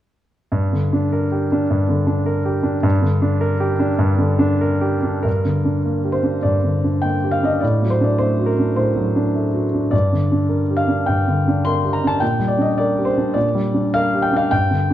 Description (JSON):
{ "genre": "classical, romantic character piece for solo piano", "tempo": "104 BPM", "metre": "4/4", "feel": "rubato", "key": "G minor", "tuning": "A4 = 435 Hz", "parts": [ { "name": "clear concert grand piano", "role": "solo", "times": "0.5-14.9 s", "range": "G2 to C6", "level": "-16 LUFS", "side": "equal", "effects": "none" } ], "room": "moderate recital hall reverb, RT60 1.8 s", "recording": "dark, warm production", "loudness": "-16 LUFS", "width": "side -12 dB against mid", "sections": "0.5-5.3 A section; 5.3-14.9 B section", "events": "none", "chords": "0.5 Gm; 7.6 D7/A; 9.9 Gm; 12.2 Gm/Bb" }